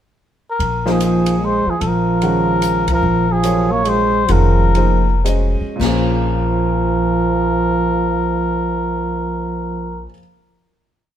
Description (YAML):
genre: modal jazz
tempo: 104-149 BPM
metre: 3/4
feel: swing 64% on 8ths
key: Bb minor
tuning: A4 = 438 Hz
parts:
  - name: trumpet with cup mute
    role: melody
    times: 0.5-10.0 s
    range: Ab4 to Db5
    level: -20 LUFS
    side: left 3 dB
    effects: none
  - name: upright bass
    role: bass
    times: 0.6-10.1 s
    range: F1 to Bb1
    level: -20 LUFS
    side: left 1 dB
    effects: none
  - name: open jazz drum kit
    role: drums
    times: 0.6-6.0 s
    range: crash cymbal, hi-hat, kick drum, ride cymbal, snare drum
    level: -28 LUFS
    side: equal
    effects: none
  - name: breathy trombone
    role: second line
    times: 0.9-10.0 s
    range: F3 to Bb3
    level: -19 LUFS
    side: right 3 dB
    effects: none
  - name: warm concert grand piano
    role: accompaniment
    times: 0.9-10.2 s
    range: Bb2 to Gb5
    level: -22 LUFS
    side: left 1 dB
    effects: none
room: light reverb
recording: band playing live in one room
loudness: -14 LUFS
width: side -10 dB against mid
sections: 0.0-0.6 pickup bar; 0.6-5.8 A section; 5.8-9.3 final chord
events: band accent 2.8; slowing down 3.0-5.8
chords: 0.0 N.C.; 0.6 Bbm9